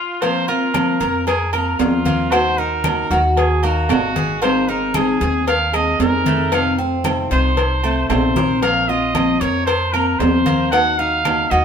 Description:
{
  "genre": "latin, Cuban son and guajira",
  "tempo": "114 BPM",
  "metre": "4/4",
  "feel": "straight",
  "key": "unclear",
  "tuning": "A4 = 440 Hz",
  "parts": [
    { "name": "warm trumpet", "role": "melody", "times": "0.0-11.6 s", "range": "F4 to Gb5", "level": "-20 LUFS", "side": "right 2 dB", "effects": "none" },
    { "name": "nylon-string guitar", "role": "accompaniment", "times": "0.2-11.6 s", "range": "C3 to Ab4", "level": "-21 LUFS", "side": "left 2 dB", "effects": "none" },
    { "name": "Cuban tres", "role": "arpeggios", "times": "0.2-11.6 s", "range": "A3 to Bb4", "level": "-23 LUFS", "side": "right 2 dB", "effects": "none" },
    { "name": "agogo bells and timbales", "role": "percussion", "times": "0.2-11.5 s", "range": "none", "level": "-24 LUFS", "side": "right 5 dB", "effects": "none" },
    { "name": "congas", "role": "percussion", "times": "0.2-11.6 s", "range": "none", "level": "-26 LUFS", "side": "left 2 dB", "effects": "none" },
    { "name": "cowbell and bongos", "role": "percussion", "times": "0.2-11.6 s", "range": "none", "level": "-26 LUFS", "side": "left 6 dB", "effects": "none" },
    { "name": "claves", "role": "percussion", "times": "0.7-11.5 s", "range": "none", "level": "-31 LUFS", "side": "left 5 dB", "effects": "none" },
    { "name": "upright bass", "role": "bass", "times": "1.0-11.6 s", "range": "Ab1 to F2", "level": "-23 LUFS", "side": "left 1 dB", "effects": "none" }
  ],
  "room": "wet stone room reverb, RT60 1.2 s",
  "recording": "band playing live in one room",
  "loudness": "-15 LUFS",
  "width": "side -7 dB against mid",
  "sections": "0.2-11.6 A section",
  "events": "drum fill 0.0, 8.4; band accent 0.0",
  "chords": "0.2 Bbsus2; 2.3 Ebm; 4.4 Abadd9; 6.5 F7; 8.6 Bbsus2; 10.7 Ebm"
}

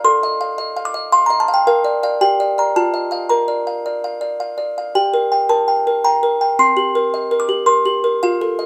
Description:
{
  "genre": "classical, lullaby for music box",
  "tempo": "110 BPM",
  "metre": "3/4",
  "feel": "rubato",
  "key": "unclear",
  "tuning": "A4 = 444 Hz",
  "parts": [
    { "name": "music box", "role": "solo", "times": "0.0-8.7 s", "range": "C4 to D6", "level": "-17 LUFS", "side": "equal", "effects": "none" }
  ],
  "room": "light reverb",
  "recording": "none",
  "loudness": "-17 LUFS",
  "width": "mono",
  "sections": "0.0-5.0 A section; 5.0-8.7 B section",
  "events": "none",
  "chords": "0.0 F7/A; 1.7 Bb; 2.2 Gm; 2.7 F7; 3.3 Bb; 5.0 Gm; 6.6 Cm7"
}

